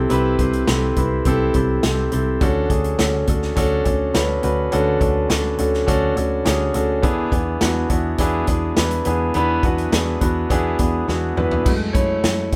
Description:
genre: piano-driven pop.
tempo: 104 BPM.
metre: 4/4.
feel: straight.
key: unclear.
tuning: A4 = 438 Hz.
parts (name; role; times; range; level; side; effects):
warm concert grand piano; accompaniment; 0.0-12.6 s; C3 to C#5; -22 LUFS; equal; none.
vintage muted fingered electric bass; bass; 0.0-12.6 s; C2 to F#2; -26 LUFS; equal; none.
natural country drum kit; drums; 0.1-12.6 s; crash cymbal, hi-hat, kick drum, snare drum, toms; -24 LUFS; equal; none.
room: moderate studio reverb, RT60 0.8 s.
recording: band playing live in one room.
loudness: -19 LUFS.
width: mono.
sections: 0.0-11.7 A section.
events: drum fill 11.1-11.7.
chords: 0.0 C6; 2.4 Dmaj7; 7.0 E7; 11.7 F#madd9.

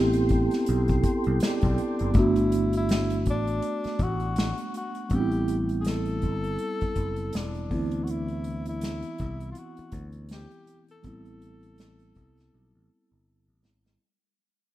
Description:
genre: R&B, neo-soul.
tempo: 81 BPM.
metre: 4/4.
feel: swing 58% on 16ths.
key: A dorian.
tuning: A4 = 440 Hz.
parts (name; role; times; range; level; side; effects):
mellow tine electric piano; accompaniment; 0.0-14.0 s; E3 to G4; -28 LUFS; right 2 dB; medium stereo tremolo.
percussive tonewheel organ; sustained chords; 0.0-2.1 s; A4 to C6; -36 LUFS; left 1 dB; slow rotary speaker, chorus vibrato.
picked electric bass; bass; 0.0-14.0 s; E1 to D2; -29 LUFS; left 1 dB; none.
unplugged drum kit; drums; 0.1-14.0 s; hi-hat, kick drum, snare drum; -28 LUFS; left 1 dB; none.
breathy tenor saxophone; melody; 1.5-13.6 s; D4 to A4; -35 LUFS; left 3 dB; none.
room: light reverb, small room ambience.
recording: rough home demo mix.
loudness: -24 LUFS.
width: side -14 dB against mid.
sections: 0.0-2.2 A section; 2.2-14.0 B section.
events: fade-out 2.2-14.0; drum fill 12.5-14.0.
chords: 0.0 Am9; 2.2 Gmaj9; 5.1 Am9; 7.7 Dsus2; 11.0 Am9.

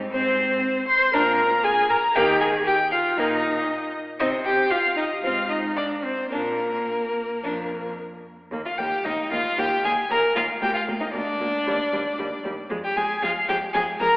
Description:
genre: quick classical-period movement for string quartet.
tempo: 116 BPM.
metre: 4/4.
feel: rubato.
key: Eb major.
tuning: A4 = 440 Hz.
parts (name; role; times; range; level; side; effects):
rich violin; second line; 0.0-14.2 s; Bb3 to Bb4; -27 LUFS; equal; none.
rich cello; bass; 0.0-14.1 s; D2 to Eb3; -33 LUFS; equal; none.
warm violin; melody; 0.1-14.2 s; Bb4 to C6; -24 LUFS; left 1 dB; none.
rich viola; accompaniment; 0.1-14.1 s; G3 to C5; -26 LUFS; equal; none.
room: wet concert hall reverb, RT60 2.4 s.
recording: heard from further back in the room, telephone sound.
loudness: -20 LUFS.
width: side -23 dB against mid.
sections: 0.0-8.5 A section; 8.5-14.2 B section.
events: none.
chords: 0.1 Ab; 1.1 Bb; 2.1 Eb5; 4.2 Cmadd11; 5.2 Ab6; 6.3 Bb; 8.5 Eb5; 10.6 Bb/D; 11.7 Eb; 12.7 Fm.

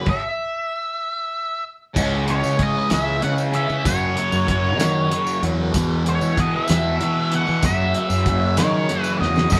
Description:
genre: psychedelic rock.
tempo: 64 BPM (dotted quarters).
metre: 6/8.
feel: straight.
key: unclear.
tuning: A4 = 440 Hz.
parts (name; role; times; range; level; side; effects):
octave-fuzz lead guitar; melody; 0.0-9.6 s; C#5 to F#5; -26 LUFS; equal; wah, distortion.
tonewheel organ; sustained chords; 0.0-9.6 s; E3 to A#5; -36 LUFS; equal; none.
fuzz guitar; riff; 0.0-9.6 s; E2 to C#4; -26 LUFS; equal; distortion, phaser.
cloth-damped thuddy drum kit; drums; 0.1-9.6 s; crash cymbal, hi-hat, kick drum, snare drum; -26 LUFS; equal; none.
fuzz fingered electric bass; bass; 2.0-9.6 s; C#2 to E3; -25 LUFS; equal; overdrive.
tambourine; percussion; 2.0-9.6 s; none; -38 LUFS; equal; none.
room: moderate studio reverb, RT60 0.7 s.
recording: band playing live in one room.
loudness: -21 LUFS.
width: mono.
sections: 0.0-2.0 A section; 2.0-9.5 B section.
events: stop 0.1-2.0; drum fill 9.2-9.5.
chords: 0.1 N.C.; 2.0 C#m7; 3.9 F#7; 5.7 E; 7.6 F#7sus4.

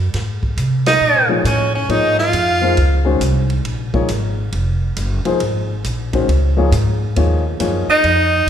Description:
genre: modal jazz.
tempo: 137 BPM.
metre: 4/4.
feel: swing 65% on 8ths.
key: Eb dorian.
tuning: A4 = 442 Hz.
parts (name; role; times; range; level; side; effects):
upright bass; bass; 0.0-8.5 s; F1 to C3; -17 LUFS; equal; none.
vintage drum kit; drums; 0.1-8.2 s; hi-hat, kick drum, ride cymbal, snare drum; -27 LUFS; right 1 dB; none.
edgy tenor saxophone; melody; 0.9-3.0, 7.9-8.4 s; Db4 to F4; -15 LUFS; equal; none.
bright alto saxophone; second line; 0.9-3.0, 7.9-8.4 s; Db5 to F5; -20 LUFS; right 4 dB; none.
warm grand piano; accompaniment; 1.3-7.9 s; Eb3 to Db5; -20 LUFS; left 3 dB; none.
room: moderate scoring stage reverb, RT60 1.7 s.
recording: recorded in a church or concert hall.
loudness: -14 LUFS.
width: side -9 dB against mid.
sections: 0.0-8.5 A section.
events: band accent 0.8.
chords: 0.0 Eb9sus4.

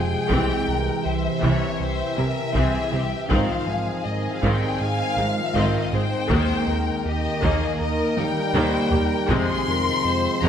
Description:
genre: cinematic, hybrid orchestral and electronic film score.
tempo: 80 BPM.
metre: 4/4.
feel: straight.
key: unclear.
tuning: A4 = 440 Hz.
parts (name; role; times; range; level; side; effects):
warm symphonic violin section; melody; 0.0-10.5 s; Eb5 to C6; -27 LUFS; left 5 dB; none.
warm symphonic violin section; second line; 0.0-10.5 s; G4 to F5; -30 LUFS; left 3 dB; none.
mellow French horn section; sustained chords; 0.0-10.5 s; Eb3 to C4; -30 LUFS; left 3 dB; none.
warbly tape-like pad; sustained chords; 0.0-10.5 s; C3 to G5; -30 LUFS; right 2 dB; chorus, built-in reverb.
warm trombone section; sustained chords; 0.0-10.5 s; C3 to C4; -33 LUFS; right 3 dB; none.
smooth synth bass; riff; 0.0-10.5 s; C2 to Ab3; -28 LUFS; right 1 dB; none.
clear symphonic viola section; accompaniment; 0.3-10.5 s; C3 to Ab4; -27 LUFS; equal; none.
dark symphonic double bass section; bass; 0.3-10.5 s; F1 to Eb2; -30 LUFS; right 2 dB; none.
rich symphonic cello section; bass; 0.3-10.5 s; Eb2 to C3; -30 LUFS; right 3 dB; none.
taiko ensemble; drums; 0.3-10.5 s; none; -29 LUFS; equal; none.
room: wet scoring stage reverb, RT60 1.7 s.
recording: none.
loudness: -20 LUFS.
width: side -8 dB against mid.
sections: 0.0-10.5 A section.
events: drum fill 8.2-9.3.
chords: 0.3 C; 3.3 Ab; 6.3 Eb; 9.3 Fm.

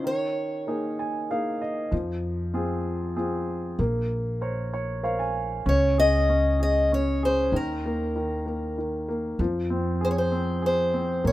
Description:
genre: acoustic folk-pop ballad.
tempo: 96 BPM.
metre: 3/4.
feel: straight.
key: Db major.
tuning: A4 = 438 Hz.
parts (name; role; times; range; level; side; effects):
picked acoustic archtop guitar; melody; 0.0-1.6, 5.7-11.3 s; Bb4 to Eb5; -25 LUFS; equal; none.
warm upright piano; accompaniment; 0.0-11.3 s; Eb3 to Ab5; -28 LUFS; equal; none.
upright bass; bass; 1.9-11.3 s; Bb1 to F2; -28 LUFS; equal; none.
room: little or no reverb.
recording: minimal, uncompressed stereo recording.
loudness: -23 LUFS.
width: side -15 dB against mid.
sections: 0.0-5.7 A section; 5.7-11.3 B section.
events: none.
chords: 0.1 Absus2/Eb; 1.9 Fm; 3.8 Bbmadd9; 5.7 Dbsus2; 7.5 Eb5; 9.4 Fm.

